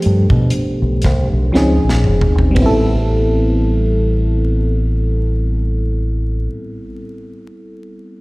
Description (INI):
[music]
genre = R&B, neo-soul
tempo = 57-62 BPM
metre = 4/4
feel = swing 54% on 16ths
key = A minor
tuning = A4 = 439 Hz
[part]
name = FM electric piano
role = accompaniment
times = 0.0-8.2 s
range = F3 to C5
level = -19 LUFS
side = equal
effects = chorus, slapback echo
[part]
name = tight funk drum kit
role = drums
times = 0.0-2.8 s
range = hi-hat, kick drum, ride cymbal, snare drum, toms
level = -18 LUFS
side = equal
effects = none
[part]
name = deep dub fingered electric bass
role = bass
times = 0.1-6.5 s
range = E#1 to B2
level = -15 LUFS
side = equal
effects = none
[sound]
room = small room ambience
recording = live gig heard through the venue's PA, recital hall reverb, vinyl crackle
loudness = -13 LUFS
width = side -23 dB against mid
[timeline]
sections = 0.0-2.6 A section; 2.6-6.8 B section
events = slowing down 0.0-2.6; drum fill 1.5-2.6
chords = 0.0 G7; 1.5 C#maj9; 2.6 Am9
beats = 0.52 1.53 | 2.56 3.62 4.67 5.72